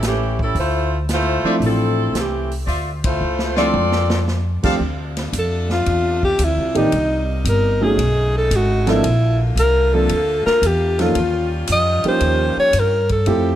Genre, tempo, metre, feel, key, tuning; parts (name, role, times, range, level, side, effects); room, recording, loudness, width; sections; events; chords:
jazz, big band swing; 113 BPM; 4/4; swing 68% on 8ths; D minor; A4 = 442 Hz
warm saxophone section; melody; 0.0-4.2 s; E3 to D5; -20 LUFS; left 1 dB
upright bass; bass; 0.0-13.6 s; G1 to G2; -20 LUFS; equal
swinging big-band drum kit; drums; 0.0-13.4 s; crash cymbal, hi-hat, kick drum, ride cymbal, snare drum, toms; -27 LUFS; equal
dark concert grand piano; accompaniment; 1.4-13.6 s; Eb3 to A4; -21 LUFS; right 1 dB
clear trumpet section; stabs; 1.4-4.7 s; F4 to F5; -27 LUFS; left 1 dB
edgy saxophone section; sustained chords; 4.8-13.6 s; C3 to G4; -29 LUFS; left 2 dB
clear alto saxophone; melody; 5.4-13.6 s; Eb4 to Eb5; -18 LUFS; equal
light reverb; -16 LUFS; side -12 dB against mid
0.0-4.8 A section; 4.8-13.6 B section
band accent 2.9; drum fill 3.2-4.3; alto saxophone solo 4.8-13.6
0.0 A7; 0.6 Dm9; 4.8 Dm7; 6.9 Cm7; 8.0 B13; 9.0 Bbmaj7; 11.2 Eb9